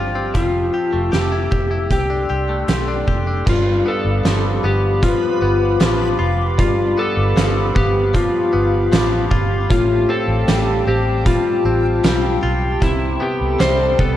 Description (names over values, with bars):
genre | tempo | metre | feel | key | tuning
dream pop | 77 BPM | 4/4 | straight | G mixolydian | A4 = 441 Hz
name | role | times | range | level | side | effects
hollow soft pad | sustained chords | 0.0-14.2 s | G4 to E6 | -25 LUFS | right 2 dB | chorus
direct-recorded clean electric guitar | arpeggios | 0.0-14.2 s | G2 to G4 | -24 LUFS | left 2 dB | wide subtle chorus, digital delay
vintage muted fingered electric bass | bass | 0.0-14.2 s | F1 to C2 | -20 LUFS | equal | none
oversized low-tuned drum kit | drums | 0.3-14.2 s | crash cymbal, hi-hat, kick drum, snare drum, tambourine | -21 LUFS | right 1 dB | none
electric slide guitar | melody | 0.4-14.2 s | E4 to C5 | -20 LUFS | left 2 dB | digital delay
backwards swelling texture | texture | 5.0-14.2 s | E4 to B4 | -32 LUFS | right 2 dB | none
room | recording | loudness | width
light reverb, studio reverb | dark, warm production | -15 LUFS | side -12 dB against mid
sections
0.0-3.5 A section; 3.5-14.2 B section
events
none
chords
0.4 Fmaj9; 1.9 C69; 3.5 G7; 9.7 Fadd9/A; 12.8 Cmaj7